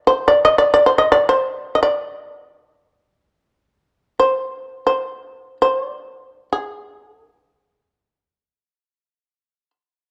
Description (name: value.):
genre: japanese traditional, Japanese chamber music.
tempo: free time.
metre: none.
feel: none.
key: C hirajoshi.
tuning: A4 = 440 Hz.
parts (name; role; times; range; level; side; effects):
shamisen; solo; 0.0-9.7 s; C5 to Eb5; -17 LUFS; equal; none.
room: moderate recital hall reverb, RT60 1.4 s.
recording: dark, warm production.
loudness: -17 LUFS.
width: mono.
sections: 0.0-10.1 A section.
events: none.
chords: none.